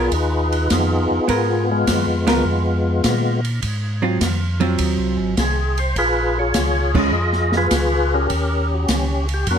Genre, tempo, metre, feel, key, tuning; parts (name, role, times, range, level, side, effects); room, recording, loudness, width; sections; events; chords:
soul jazz organ trio; 103 BPM; 4/4; swing 69% on 8ths; A4 = 443 Hz
percussive tonewheel organ; melody; 0.0-9.6 s; Ab3 to Eb5; -20 LUFS; left 2 dB; slow rotary speaker, overdrive, chorus vibrato
vintage hollow-body jazz guitar; accompaniment; 0.0-7.1 s; Gb3 to Bb4; -19 LUFS; right 3 dB
tonewheel organ; bass; 0.0-9.6 s; Ab1 to Bb2; -21 LUFS; equal; chorus vibrato
open jazz drum kit; drums; 0.1-9.6 s; crash cymbal, hi-hat, kick drum, ride cymbal, snare drum; -24 LUFS; equal
little or no reverb; close, detailed microphones; -16 LUFS; side -8 dB against mid
0.0-9.6 A section
band accent 2.2, 6.8
0.0 Db13 (rootless); 3.6 Ab6; 6.0 Bbm7; 8.3 Eb9